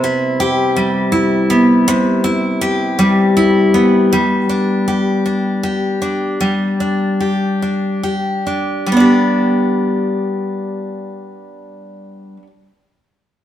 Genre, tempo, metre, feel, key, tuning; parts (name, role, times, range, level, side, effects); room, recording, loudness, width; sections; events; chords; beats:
pop; 44-54 BPM (dotted quarters); 6/8; straight; G major; A4 = 438 Hz
picked steel-string acoustic guitar; solo; 0.0-12.5 s; C3 to G4; -13 LUFS; left 1 dB
wet stone room reverb, RT60 1.3 s; band playing live in one room; -13 LUFS; side -11 dB against mid
0.0-4.1 A section; 4.1-8.9 B section; 8.9-11.6 C section
slowing down 4.1-8.9
0.0 Cmaj7; 4.1 G5
0.78 | 1.88 3.00 | 4.12 5.25 | 6.40 7.60 | 8.90 10.25